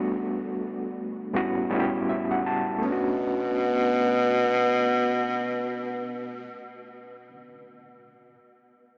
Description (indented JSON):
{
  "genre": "R&B",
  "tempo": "80 BPM",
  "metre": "4/4",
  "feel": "swing 57% on 16ths",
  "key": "B minor",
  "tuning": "A4 = 440 Hz",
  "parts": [
    { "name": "overdriven reed electric piano", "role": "accompaniment", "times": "0.0-8.4 s", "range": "A2 to A5", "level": "-30 LUFS", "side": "equal", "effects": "tremolo" },
    { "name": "warm tenor saxophone", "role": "melody", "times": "2.9-6.6 s", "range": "B2", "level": "-28 LUFS", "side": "equal", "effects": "none" }
  ],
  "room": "wet huge ambient reverb, RT60 7.2 s",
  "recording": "dreamy mix soaked in reverb, AM radio sound",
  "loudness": "-26 LUFS",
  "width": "mono",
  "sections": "0.0-2.8 A section; 2.8-5.8 B section",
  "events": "reed electric piano fill 1.7-2.8",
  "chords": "0.0 Gmaj9; 1.3 A13; 2.8 Bm9"
}